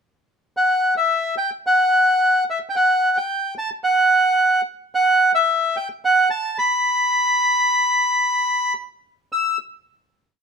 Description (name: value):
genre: tango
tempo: 110 BPM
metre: 4/4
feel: rubato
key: unclear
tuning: A4 = 440 Hz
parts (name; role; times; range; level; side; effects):
- bandoneon; solo; 0.6-9.6 s; E5 to E6; -16 LUFS; equal; none
room: light reverb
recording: band playing live in one room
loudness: -16 LUFS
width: side -6 dB against mid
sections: 0.6-9.3 A section; 9.3-10.4 final note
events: none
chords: none